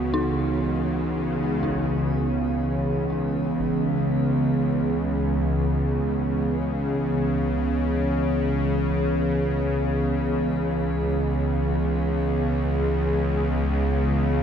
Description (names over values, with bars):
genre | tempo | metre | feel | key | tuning
dark ambient drone | free time | none | none | C# minor | A4 = 440 Hz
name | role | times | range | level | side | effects
dark analog pad | sustained chords | 0.0-14.4 s | C#3 to G#4 | -24 LUFS | right 1 dB | chorus, shimmer reverb
dark detuned synth bell | arpeggios | 0.0-6.1 s | D#4 to F#4 | -33 LUFS | left 1 dB | chorus, tape echo, shimmer reverb
bowed-like drone | drone | 0.0-14.4 s | C#2 to C#3 | -25 LUFS | equal | built-in reverb
bronze singing bowl | texture | 0.0-14.4 s | none | barely audible | none | none
taiko ensemble | percussion | 1.6-3.8 s | none | -44 LUFS | equal | none
room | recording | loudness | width
wet huge ambient reverb, RT60 7.7 s | none | -22 LUFS | side -8 dB against mid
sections
0.0-1.6 A section; 1.6-14.4 B section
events
none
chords
0.0 C#madd9